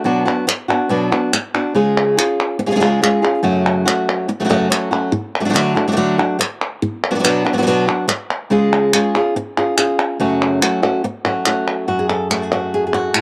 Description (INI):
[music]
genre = flamenco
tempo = 142 BPM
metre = 4/4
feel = straight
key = F# harmonic minor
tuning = A4 = 440 Hz
[part]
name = flamenco guitar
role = melody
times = 0.0-13.2 s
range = F#2 to A4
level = -18 LUFS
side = equal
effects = cassette tape
[part]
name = palmas hand claps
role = percussion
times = 0.3-13.2 s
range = none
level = -22 LUFS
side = equal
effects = none
[sound]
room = light reverb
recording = home recording on cassette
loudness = -17 LUFS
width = mono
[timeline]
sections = 0.0-11.9 A section; 11.9-13.2 B section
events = none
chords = 0.1 Bm; 1.8 C#; 3.4 F#m; 5.1 D; 6.8 Bm; 8.5 C#; 10.2 F#m